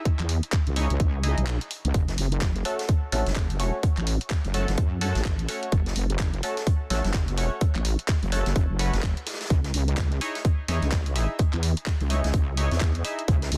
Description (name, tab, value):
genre	bass house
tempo	127 BPM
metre	4/4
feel	swing 60% on 16ths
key	F# dorian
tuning	A4 = 437 Hz
part	electronic kick drum	drums	0.1-13.4 s	none	-26 LUFS	equal	none
part	garage drum kit	drums	0.1-13.6 s	handclaps, hi-hat	-36 LUFS	equal	soft clipping on snare
part	wobble bass	bass	0.2-13.6 s	F#1 to F#2	-28 LUFS	equal	chorus, tube saturation, sidechain pumping
part	band-passed chord stab	stabs	0.8-13.2 s	A3 to E5	-35 LUFS	equal	chorus, phaser, sidechain pumping, dub echo
part	soft brush drum kit	drums	1.9-13.6 s	hi-hat, snare drum	-42 LUFS	equal	none
room	small room ambience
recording	dense, heavily limited modern master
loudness	-25 LUFS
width	mono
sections	0.0-13.6 A section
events	break 1.5-1.9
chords	0.0 C#madd9; 1.9 F#m; 9.5 C#madd9